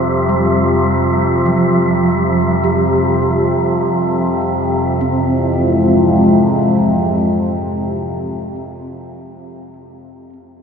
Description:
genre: dark ambient drone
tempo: 51 BPM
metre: 4/4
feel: straight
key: F harmonic minor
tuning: A4 = 442 Hz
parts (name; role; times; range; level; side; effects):
- dark analog pad; sustained chords; 0.0-8.5 s; Ab3 to C5; -17 LUFS; left 2 dB; chorus
- overtone-sweeping drone; drone; 0.0-8.1 s; F2 to C3; -17 LUFS; right 1 dB; chorus, built-in reverb
- wind-like tuned noise texture; texture; 0.0-5.0 s; E5; -25 LUFS; right 1 dB; built-in reverb
- gamelan-type bronze metallophone; arpeggios; 0.3-9.7 s; F3 to G4; -20 LUFS; right 3 dB; tape echo
room: wet huge ambient reverb, RT60 8.2 s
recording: none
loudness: -12 LUFS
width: side -6 dB against mid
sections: 0.0-5.0 A section; 5.0-9.7 B section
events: none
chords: 0.0 Fsus2; 5.0 Fmadd9

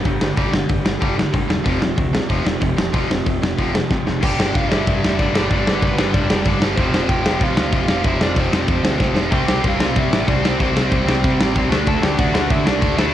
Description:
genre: punk rock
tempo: 188 BPM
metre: 4/4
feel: straight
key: unclear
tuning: A4 = 437 Hz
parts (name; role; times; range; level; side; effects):
- distorted electric guitar; riff; 0.0-13.1 s; F2 to D4; -24 LUFS; left 9 dB; overdrive, cassette tape
- distorted electric guitar; riff; 0.0-13.1 s; F2 to D4; -25 LUFS; right 8 dB; overdrive, cassette tape
- raw garage guitar; riff; 0.0-4.2, 9.3-13.1 s; F2 to D4; -25 LUFS; equal; overdrive, cassette tape
- growling picked electric bass; bass; 0.0-13.1 s; E1 to D3; -24 LUFS; equal; overdrive
- big rock drum kit; drums; 0.0-13.1 s; crash cymbal, hi-hat, kick drum, snare drum; -18 LUFS; equal; cassette tape
- biting lead guitar; melody; 4.2-13.1 s; B3 to A5; -25 LUFS; equal; overdrive, cassette tape, tape echo
room: light reverb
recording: home recording on cassette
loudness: -16 LUFS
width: side -11 dB against mid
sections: 0.0-4.2 A section; 4.2-13.1 B section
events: drum fill 3.9-4.2, 9.0-9.3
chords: 0.0 G5; 1.7 F5; 4.2 G; 6.8 F5; 9.3 C; 11.7 D

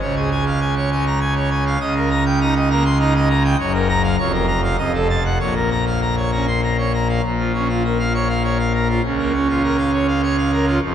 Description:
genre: classical, organ toccata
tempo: 100 BPM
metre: 3/4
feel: straight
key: Bb minor from 3.6 s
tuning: A4 = 441 Hz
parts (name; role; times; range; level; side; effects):
- pipe organ, full organ; solo; 0.0-10.9 s; F1 to C6; -16 LUFS; equal; none
room: wet cathedral reverb, RT60 4.5 s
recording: none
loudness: -16 LUFS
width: side -9 dB against mid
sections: 0.0-7.2 A section; 7.2-10.9 B section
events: none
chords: 0.0 Db; 1.8 Eb7/Db; 3.6 Gbmaj7; 4.2 Bbm/F; 4.8 F7b9; 5.4 Bbm; 9.0 Bbm/Db

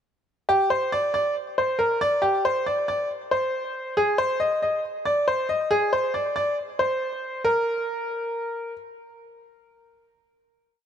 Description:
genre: hip hop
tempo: 138 BPM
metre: 4/4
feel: half-time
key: unclear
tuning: A4 = 439 Hz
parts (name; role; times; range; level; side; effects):
- bright upright piano; solo; 0.5-8.7 s; G4 to Eb5; -22 LUFS; equal; none
room: light reverb, studio reverb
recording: none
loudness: -22 LUFS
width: side -8 dB against mid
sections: 0.5-7.4 hook; 7.4-10.9 final note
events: none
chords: none

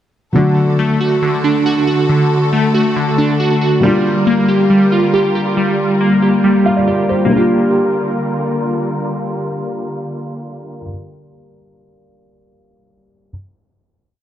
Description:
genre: hip hop, drill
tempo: 138 BPM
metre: 4/4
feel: half-time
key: G minor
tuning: A4 = 440 Hz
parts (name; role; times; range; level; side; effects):
- felt-muted upright piano; accompaniment; 0.3-13.3 s; F#3 to F5; -19 LUFS; left 1 dB; low-pass filter
- clear symphonic string section; sustained chords; 0.4-10.8 s; D3 to Bb4; -22 LUFS; left 1 dB; none
- glassy digital keys; arpeggios; 0.4-10.9 s; D3 to G4; -14 LUFS; equal; chorus, tremolo, low-pass filter, digital delay
room: light reverb, studio reverb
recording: dark, warm production, low-pass filter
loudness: -12 LUFS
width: side -11 dB against mid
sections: 0.4-7.3 breakdown; 7.3-10.8 final chord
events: filter sweep 0.4-7.3; felt piano fill 6.4-7.3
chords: 0.4 D; 3.8 Gm7

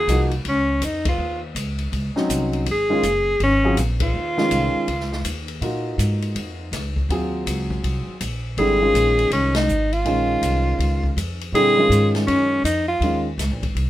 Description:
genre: modal jazz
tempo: 162 BPM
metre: 4/4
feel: swing 63% on 8ths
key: Eb dorian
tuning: A4 = 438 Hz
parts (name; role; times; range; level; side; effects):
- clear alto saxophone; melody; 0.0-5.5, 8.6-13.2 s; Db4 to Ab4; -19 LUFS; equal; none
- upright bass; bass; 0.0-13.9 s; Gb1 to Bb2; -24 LUFS; equal; none
- warm upright piano; accompaniment; 0.1-13.2 s; D3 to Ab4; -24 LUFS; equal; none
- open jazz drum kit; drums; 0.1-13.9 s; hi-hat, kick drum, ride cymbal, snare drum; -29 LUFS; left 2 dB; none
room: light reverb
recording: minimal, uncompressed stereo recording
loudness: -18 LUFS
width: side -14 dB against mid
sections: 0.0-13.9 A section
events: band accent 1.0, 4.0, 9.5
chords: 0.0 Eb13sus4

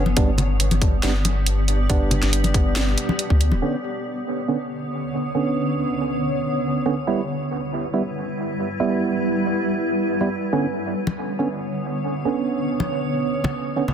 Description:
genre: deep dubstep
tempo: 139 BPM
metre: 4/4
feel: half-time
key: B minor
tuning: A4 = 440 Hz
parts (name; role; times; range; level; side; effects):
- granular cloud pad; sustained chords; 0.0-13.9 s; D3 to D5; -25 LUFS; equal; built-in reverb, vintage 12-bit sampler grit
- percussive organ stab; stabs; 0.0-13.8 s; D3 to E4; -25 LUFS; right 4 dB; chorus, dub echo
- soft dub sub bass; bass; 0.0-3.6 s; D1 to D2; -20 LUFS; equal; none
- congas; percussion; 0.1-3.6, 11.1-13.9 s; none; -26 LUFS; left 2 dB; none
- electronic kick drum; drums; 0.2-3.4 s; none; -19 LUFS; equal; overdrive
- garage drum kit; drums; 0.2-3.5 s; hi-hat, snare drum; -25 LUFS; right 1 dB; overdrive, low-pass filter on hats, low-pass filter on snare
room: moderate spring reverb, RT60 1.8 s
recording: dense, heavily limited modern master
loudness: -20 LUFS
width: side -8 dB against mid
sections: 0.0-3.6 A section; 3.6-13.9 B section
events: none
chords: 0.2 G; 3.6 Bmadd9; 7.1 Em; 10.5 Bmadd9

